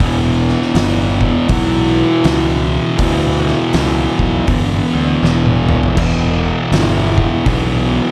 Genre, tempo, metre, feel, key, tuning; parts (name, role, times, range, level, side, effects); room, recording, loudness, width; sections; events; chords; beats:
stoner and doom metal; 80 BPM; 4/4; swing 62% on 8ths; E dorian; A4 = 440 Hz
thick fuzz guitar; riff; 0.0-8.1 s; E2 to E3; -17 LUFS; equal; distortion
fuzz fingered electric bass; bass; 0.0-8.0 s; E1 to D2; -20 LUFS; equal; overdrive, tube saturation
oversized low-tuned drum kit; drums; 0.0-7.7 s; crash cymbal, hi-hat, kick drum, snare drum, toms; -21 LUFS; equal
moderate large studio reverb, RT60 0.8 s, studio reverb; -14 LUFS; mono
0.0-8.1 A section
drum fill 5.2-6.0
0.0 Em
| 0.01 0.76 1.50 2.25 | 3.00 3.74 4.49 5.23 | 5.98 6.72 7.47